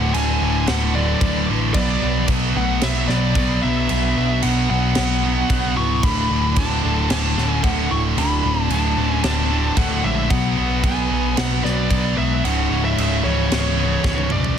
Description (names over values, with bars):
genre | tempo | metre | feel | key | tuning
heavy metal | 112 BPM | 4/4 | straight | unclear | A4 = 442 Hz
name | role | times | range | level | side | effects
high-gain lead guitar | melody | 0.0-14.6 s | C#5 to C#6 | -25 LUFS | equal | distortion
high-gain lead guitar | second line | 0.0-14.3 s | E3 to E4 | -29 LUFS | right 2 dB | distortion, ping-pong delay
rich symphonic string section | sustained chords | 0.0-14.6 s | F#3 to C#5 | -35 LUFS | left 2 dB | none
crunchy overdriven guitar | riff | 0.0-14.6 s | C#2 to B3 | -27 LUFS | equal | none
heavy high-gain guitar | riff | 0.0-14.6 s | C#2 to B3 | -25 LUFS | right 12 dB | distortion
scooped high-gain guitar | riff | 0.0-14.6 s | C#2 to B3 | -26 LUFS | left 12 dB | distortion
overdriven picked electric bass | bass | 0.0-14.5 s | C#1 to B1 | -22 LUFS | equal | none
tight metal drum kit | drums | 0.1-14.6 s | crash cymbal, kick drum, snare drum, toms | -25 LUFS | equal | none
room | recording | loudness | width
small room ambience | dense, heavily limited modern master | -17 LUFS | side -8 dB against mid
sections
0.0-14.6 A section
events
half time 0.0-14.6; drum fill 14.0-14.6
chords
0.0 D; 1.8 Bm; 6.0 D; 10.3 Bm; 12.4 C#m